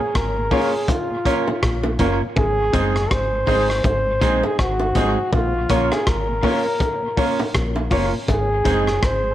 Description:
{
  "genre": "roots reggae",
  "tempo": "81 BPM",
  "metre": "4/4",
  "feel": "swing 59% on 16ths",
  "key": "Bb minor",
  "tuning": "A4 = 440 Hz",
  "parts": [
    { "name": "breathy flugelhorn", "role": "melody", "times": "0.0-9.3 s", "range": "F4 to C5", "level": "-22 LUFS", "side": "equal", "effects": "tape echo" },
    { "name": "mellow tonewheel organ", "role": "accompaniment", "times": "0.0-9.3 s", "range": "Ab2 to Db4", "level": "-31 LUFS", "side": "left 1 dB", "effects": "none" },
    { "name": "deep dub fingered electric bass", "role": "bass", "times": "0.2-9.3 s", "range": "Gb1 to Bb1", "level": "-24 LUFS", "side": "equal", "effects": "none" },
    { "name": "crunchy breakbeat drum kit", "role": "drums", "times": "0.2-9.2 s", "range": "hi-hat, kick drum, rim click", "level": "-24 LUFS", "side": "equal", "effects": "dub echo" },
    { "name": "semi-hollow electric guitar", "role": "accompaniment", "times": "0.5-8.9 s", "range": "Ab3 to Bb4", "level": "-26 LUFS", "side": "right 6 dB", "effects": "tape echo" },
    { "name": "clear grand piano", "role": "stabs", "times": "0.5-8.8 s", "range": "Eb4 to Db5", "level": "-25 LUFS", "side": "left 4 dB", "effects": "none" },
    { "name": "bongos", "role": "percussion", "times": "0.5-8.5 s", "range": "none", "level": "-28 LUFS", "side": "right 1 dB", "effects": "none" }
  ],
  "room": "light reverb",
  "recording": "none",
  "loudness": "-17 LUFS",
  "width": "side -13 dB against mid",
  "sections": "0.0-9.3 A section",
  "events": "none",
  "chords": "0.0 Bbm; 2.4 Ab; 5.3 Bbm; 8.3 Ab",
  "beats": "0.15 0.89 1.63 | 2.37 3.11 3.85 4.58 | 5.33 6.06 6.80 7.54 | 8.28 9.02"
}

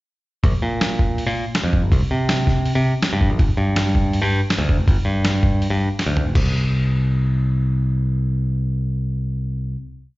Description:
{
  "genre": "indie rock",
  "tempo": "163 BPM",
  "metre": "4/4",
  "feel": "straight",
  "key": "unclear",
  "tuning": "A4 = 438 Hz",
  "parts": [
    { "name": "modern bright picked electric bass", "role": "bass", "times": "0.4-9.8 s", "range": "F1 to C3", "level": "-19 LUFS", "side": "equal", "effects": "none" },
    { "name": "lo-fi sampler-style drum kit", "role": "drums", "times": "0.4-6.4 s", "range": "crash cymbal, hi-hat, kick drum, snare drum, toms", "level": "-20 LUFS", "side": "equal", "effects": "none" }
  ],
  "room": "little or no reverb",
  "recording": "live gig heard through the venue's PA, club reverb, nothing above 7.6 kHz",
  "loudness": "-17 LUFS",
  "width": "side -20 dB against mid",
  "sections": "0.4-6.4 pre-chorus; 6.4-9.3 final chord",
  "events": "drum fill 6.0-6.4",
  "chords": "none",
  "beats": "| 0.44 0.81 1.18 1.55 | 1.92 2.29 2.66 3.03 | 3.40 3.77 4.14 4.51 | 4.88 5.25 5.62 5.98 | 6.35 6.72 7.09 7.45 | 7.82 8.19 8.55 8.92"
}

